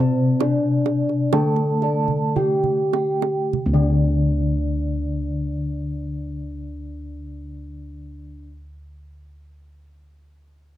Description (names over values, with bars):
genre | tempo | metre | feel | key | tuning
Javanese gamelan | 48-72 BPM | 4/4 | straight | unclear | A4 = 440 Hz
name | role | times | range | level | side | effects
gamelan-type bronze metallophone | melody | 0.0-8.5 s | C4-25c to A4 | -25 LUFS | left 1 dB | none
gamelan-type bronze metallophone | accompaniment | 0.0-8.5 s | C3-25c to A3 | -25 LUFS | left 2 dB | none
gamelan-type bossed gongs | arpeggios | 0.0-8.4 s | D5 to A5 | -33 LUFS | left 4 dB | none
gamelan-type bronze metallophone | arpeggios | 0.0-8.4 s | C5-25c to A5 | -30 LUFS | right 6 dB | none
gamelan-type bossed gongs | bass | 0.0-8.4 s | D2 to C5-25c | -26 LUFS | equal | none
kendang | percussion | 0.4-4.1 s | none | -27 LUFS | right 13 dB | none
room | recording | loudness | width
light reverb | dry, close 1970s-style studio recording | -19 LUFS | side -13 dB against mid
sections
0.0-3.5 A section; 3.5-8.6 B section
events
slowing down 0.0-3.5; drum fill 2.1-3.5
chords
none